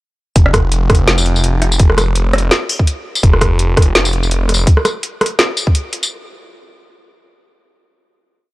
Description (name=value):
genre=half-time drum and bass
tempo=167 BPM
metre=4/4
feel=swing 56% on 16ths, half-time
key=unclear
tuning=A4 = 439 Hz
part: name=phased detuned saw bass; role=bass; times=0.4-4.7 s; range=F1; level=-14 LUFS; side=equal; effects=phaser
part: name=drum and bass drum kit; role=drums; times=0.4-6.1 s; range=hi-hat, rim click, snare drum, tambourine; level=-15 LUFS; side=equal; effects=none
part: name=electronic kick drum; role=drums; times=0.4-5.7 s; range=none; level=-11 LUFS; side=equal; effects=none
room=little or no reverb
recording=dry, gritty hardware recording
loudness=-11 LUFS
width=side -19 dB against mid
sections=0.4-6.1 drop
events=drop 0.4-6.1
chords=none